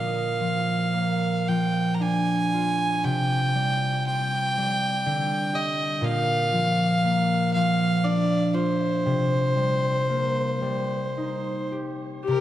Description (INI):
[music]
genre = celtic folk, Celtic slow air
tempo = 54-62 BPM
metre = 3/4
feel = rubato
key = C minor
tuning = A4 = 440 Hz
[part]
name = rich fiddle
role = melody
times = 0.0-12.4 s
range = Bb4 to Bb5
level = -25 LUFS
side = right 1 dB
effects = tape echo
[part]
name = concert harp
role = accompaniment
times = 0.0-12.4 s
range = Bb2 to G4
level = -24 LUFS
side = equal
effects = none
[part]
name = rich viola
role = second line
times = 12.3-12.4 s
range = G4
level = -22 LUFS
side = left 8 dB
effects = none
[sound]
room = moderate recital hall reverb, RT60 1.6 s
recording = dark, warm production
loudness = -22 LUFS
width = side -12 dB against mid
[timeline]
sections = 0.0-12.3 A section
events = none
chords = 0.0 Bb; 3.0 Csus2; 6.0 Bb; 9.0 Cm7